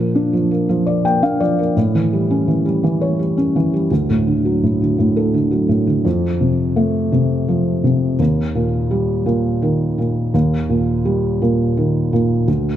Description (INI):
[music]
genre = pop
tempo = 56 BPM (dotted quarters)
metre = 6/8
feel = straight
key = unclear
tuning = A4 = 441 Hz
[part]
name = felt-muted upright piano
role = solo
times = 0.0-12.8 s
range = D2 to G5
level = -15 LUFS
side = equal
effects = none
[sound]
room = moderate concert hall reverb, RT60 1.9 s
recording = dark, warm production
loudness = -15 LUFS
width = side -11 dB against mid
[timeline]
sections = 0.0-6.1 A section; 6.1-12.8 B section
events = felt piano fill 0.7-1.8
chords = 0.0 Bb; 1.8 A7; 3.9 D; 6.1 F; 8.2 Eb